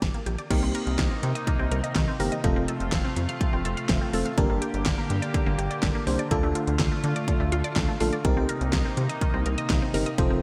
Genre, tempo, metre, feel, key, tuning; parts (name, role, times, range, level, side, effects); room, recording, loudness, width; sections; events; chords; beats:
synth-pop; 124 BPM; 4/4; straight; C dorian; A4 = 440 Hz
resonant blip pluck; arpeggios; 0.0-10.4 s; D3 to F5; -35 LUFS; equal; phaser, digital delay
rubbery square bass; bass; 0.0-10.4 s; F1 to D3; -30 LUFS; equal
pop drum kit; drums; 0.0-10.3 s; crash cymbal, handclaps, hi-hat, kick drum, snare drum; -29 LUFS; equal; gated reverb
FM electric piano; accompaniment; 0.5-10.4 s; A3 to C5; -32 LUFS; equal
chorused pulse-width pad; sustained chords; 0.5-10.4 s; C3 to G4; -34 LUFS; equal
moderate lush hall reverb, RT60 2.4 s; bright 1980s-style digital production; -26 LUFS; mono
0.5-10.4 A section
0.0 Gm; 0.5 Cm7; 2.4 F; 4.4 Gm; 6.3 Dm; 8.2 Cm7
0.02 | 0.51 0.99 1.47 1.96 | 2.44 2.92 3.41 3.89 | 4.38 4.86 5.34 5.83 | 6.31 6.80 7.28 7.76 | 8.25 8.73 9.22 9.70 | 10.18